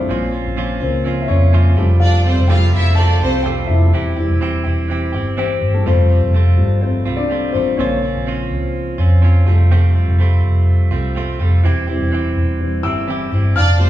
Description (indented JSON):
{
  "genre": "piano-driven pop",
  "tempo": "125 BPM",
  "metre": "4/4",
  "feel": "straight",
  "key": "F major",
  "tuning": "A4 = 440 Hz",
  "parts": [
    { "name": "dark upright piano", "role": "accompaniment", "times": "0.0-13.9 s", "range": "Db3 to F6", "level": "-22 LUFS", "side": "left 4 dB", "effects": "none" },
    { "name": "direct-recorded clean electric guitar", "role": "riff", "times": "0.0-13.6 s", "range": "F2 to G4", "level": "-23 LUFS", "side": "right 5 dB", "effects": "none" },
    { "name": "vintage muted picked electric bass", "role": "bass", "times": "0.0-13.9 s", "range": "E1 to F2", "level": "-14 LUFS", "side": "equal", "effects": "none" },
    { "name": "warm symphonic violin section", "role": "second line", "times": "2.0-3.4, 13.6-13.9 s", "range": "C4 to F5", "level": "-21 LUFS", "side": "right 1 dB", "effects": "none" }
  ],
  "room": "wet recital hall reverb, RT60 1.4 s",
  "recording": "recorded in a church or concert hall, small room ambience",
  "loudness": "-13 LUFS",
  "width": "side -13 dB against mid",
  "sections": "0.0-5.9 A section; 5.9-13.6 B section",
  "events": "upright piano solo 0.0-5.9, 5.9-13.6",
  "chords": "0.1 Bbmadd9; 1.8 Fadd9; 3.9 C/E; 5.9 Fadd9; 7.8 Bbmadd9; 9.5 Fadd9; 11.6 C/E",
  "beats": "| 0.09 0.57 1.05 1.53 | 2.01 2.49 2.97 3.46 | 3.94 4.42 4.90 5.38 | 5.86 6.34 6.82 7.30 | 7.78 8.26 8.75 9.23 | 9.71 10.19 10.67 11.15 | 11.63 12.12 12.60 13.08 | 13.56"
}